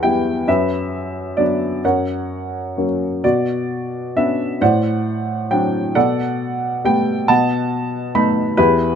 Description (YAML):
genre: classical, lyrical solo piano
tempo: 44 BPM (dotted quarters)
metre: 6/8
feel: uneven beats, rubato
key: B minor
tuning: A4 = 440 Hz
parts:
  - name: warm baby grand piano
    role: solo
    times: 0.0-9.0 s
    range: E2 to B5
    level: -16 LUFS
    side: equal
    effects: none
room: light reverb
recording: close, detailed microphones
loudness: -16 LUFS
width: side -7 dB against mid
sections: 0.0-9.0 A section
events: none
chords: 0.5 Bm/F#; 1.8 F#; 3.2 Bmadd9; 4.6 D7/A; 6.0 Gadd9/B; 7.3 B7